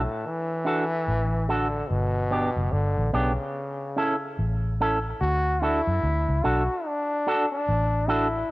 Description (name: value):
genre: roots reggae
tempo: 73 BPM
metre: 4/4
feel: swing 60% on 16ths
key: D major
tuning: A4 = 440 Hz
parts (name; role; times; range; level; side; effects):
- clear trombone; melody; 0.0-8.5 s; A2 to F#4; -27 LUFS; left 1 dB; cassette tape, tape echo
- vintage muted fingered electric bass; bass; 0.0-8.4 s; F#1 to F#2; -26 LUFS; equal; none
- electric guitar with an envelope filter; accompaniment; 0.6-8.3 s; B3 to A4; -28 LUFS; right 1 dB; cassette tape, tape echo
room: moderate spring reverb, RT60 2.1 s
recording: home recording on cassette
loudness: -23 LUFS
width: side -20 dB against mid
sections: 0.0-5.2 A section; 5.2-8.5 B section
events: none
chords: 0.0 D; 1.9 G; 3.5 A; 5.2 D